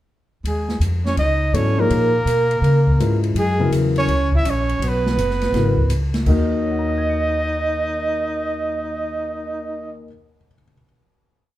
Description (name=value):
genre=modal jazz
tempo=165 BPM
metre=4/4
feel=swing 65% on 8ths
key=Eb phrygian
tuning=A4 = 440 Hz
part: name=upright bass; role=bass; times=0.4-10.0 s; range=Gb1 to Db3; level=-21 LUFS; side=equal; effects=none
part: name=clear trumpet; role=melody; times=0.5-9.9 s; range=Ab4 to Fb5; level=-23 LUFS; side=right 1 dB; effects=plate reverb
part: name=breathy tenor saxophone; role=second line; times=0.5-9.9 s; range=Ab3 to Fb4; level=-26 LUFS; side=right 4 dB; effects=none
part: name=open jazz drum kit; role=drums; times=0.5-6.4 s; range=crash cymbal, hi-hat, kick drum, ride cymbal, snare drum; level=-25 LUFS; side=equal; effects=none
part: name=dark concert grand piano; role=accompaniment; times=1.5-10.8 s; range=Eb2 to Db7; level=-23 LUFS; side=left 3 dB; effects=none
room=wet club reverb, RT60 0.5 s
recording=heard from further back in the room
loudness=-17 LUFS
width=side -14 dB against mid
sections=0.4-6.3 A section; 6.3-9.2 final chord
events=none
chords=0.4 Eb9sus4; 3.4 Gb9sus4; 6.3 Ebm